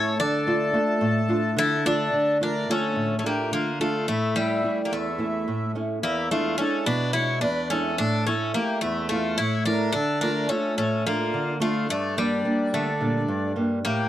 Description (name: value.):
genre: greek folk.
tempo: 215 BPM (eighths).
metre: 7/8.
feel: straight.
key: D harmonic minor.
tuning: A4 = 439 Hz.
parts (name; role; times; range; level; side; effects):
Greek bouzouki; melody; 0.0-14.1 s; G3 to D5; -26 LUFS; left 1 dB; none.
accordion; second line; 0.0-14.1 s; D4 to C#5; -29 LUFS; left 1 dB; none.
nylon-string guitar; accompaniment; 0.0-14.1 s; E2 to A4; -25 LUFS; right 1 dB; none.
room: light reverb.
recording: dry, close 1970s-style studio recording.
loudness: -22 LUFS.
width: side -12 dB against mid.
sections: 0.0-2.1 A section; 2.1-14.1 B section.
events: none.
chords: 0.2 Dm; 4.1 A; 6.0 E7; 8.0 A; 9.9 Dm; 11.9 Gm.